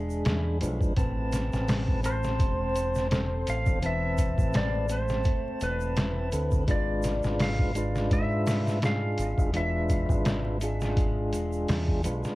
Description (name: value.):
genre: trip hop.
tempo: 84 BPM.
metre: 4/4.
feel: swing 55% on 16ths.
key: A harmonic minor.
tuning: A4 = 442 Hz.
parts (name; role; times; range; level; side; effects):
tonewheel organ; accompaniment; 0.0-12.3 s; F3 to A5; -31 LUFS; equal; stopped rotary speaker, tremolo, cassette tape, tape echo.
clean electric guitar; arpeggios; 0.0-11.9 s; E3 to G#4; -41 LUFS; left 6 dB; cassette tape, tape echo.
deep dub fingered electric bass; bass; 0.0-12.2 s; E1 to G#2; -30 LUFS; equal; tube saturation.
egg shaker; percussion; 0.1-12.3 s; none; -49 LUFS; right 8 dB; none.
trip hop sampler-style drum kit; drums; 0.3-12.3 s; hi-hat, kick drum, snare drum; -28 LUFS; equal; none.
clean lap steel guitar; melody; 2.1-10.9 s; B4 to F5; -34 LUFS; equal; vintage 12-bit sampler grit, cassette tape, tape echo.
room: little or no reverb.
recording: home recording on cassette, vinyl crackle.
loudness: -25 LUFS.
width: side -18 dB against mid.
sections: 0.0-12.3 A section.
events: none.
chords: 0.0 E7b9; 1.0 Amadd9; 6.7 E7b9.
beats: 0.26 | 0.97 1.68 2.40 3.11 | 3.83 4.54 5.26 5.97 | 6.68 7.40 8.11 8.83 | 9.54 10.26 10.97 11.68.